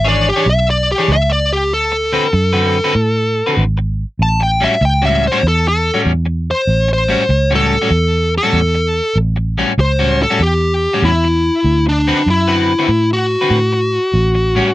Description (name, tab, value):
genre	electric blues shuffle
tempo	96 BPM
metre	4/4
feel	swing 67% on 8ths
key	A mixolydian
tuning	A4 = 442 Hz
part	smooth overdriven lead guitar	melody	0.0-14.7 s	D4 to A5	-15 LUFS	left 1 dB	none
part	electric guitar at the edge of break-up	riff	0.0-14.7 s	A2 to C#5	-16 LUFS	left 2 dB	wide subtle chorus
part	vintage muted fingered electric bass	bass	0.0-14.6 s	G#1 to A2	-16 LUFS	right 1 dB	none
room	little or no reverb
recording	none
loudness	-12 LUFS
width	side -16 dB against mid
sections	0.0-9.2 A section; 9.2-14.7 B section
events	lead electric guitar solo 9.2-14.7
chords	0.0 E6; 1.7 D6; 4.2 A6; 11.7 D13; 14.1 A6